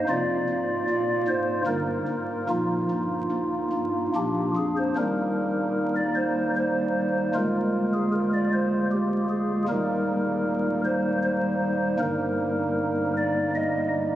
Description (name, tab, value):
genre	classical, chorale-style piece for pipe organ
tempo	77 BPM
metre	3/4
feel	rubato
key	Eb major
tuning	A4 = 440 Hz
part	pipe organ, stopped flute	solo	0.0-14.2 s	D1 to Eb5	-23 LUFS	equal	none
room	wet cathedral reverb, RT60 5.3 s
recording	recorded on a phone in the room, studio reverb, vinyl crackle, compression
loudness	-23 LUFS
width	side -13 dB against mid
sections	0.0-5.0 A section; 5.0-14.2 B section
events	none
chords	0.1 Bb7/F; 1.7 Eb/G; 2.5 Bbsus4; 4.2 Bb; 5.0 Eb; 7.3 Bb7/D; 9.7 Eb; 12.0 Eb/G